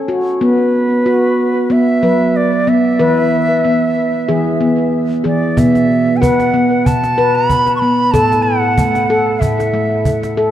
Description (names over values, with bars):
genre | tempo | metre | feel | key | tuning
world meditative, meditative tuned percussion | 93 BPM | 4/4 | swing 54% on 16ths | B dorian | A4 = 436 Hz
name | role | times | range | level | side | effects
bright reedy bansuri | melody | 0.0-10.4 s | B4 to C#6 | -17 LUFS | right 2 dB | diffuse ambient delay
handpan | arpeggios | 0.0-10.5 s | A2 to B4 | -13 LUFS | left 1 dB | diffuse ambient delay
cajon | percussion | 5.6-10.4 s | none | -20 LUFS | right 2 dB | none
room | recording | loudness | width
wet church reverb, RT60 3.7 s | dark, warm production | -11 LUFS | side -11 dB against mid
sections
0.0-5.6 A section; 5.6-10.5 B section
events
none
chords
0.4 B5; 3.0 E; 5.6 B5; 8.1 A5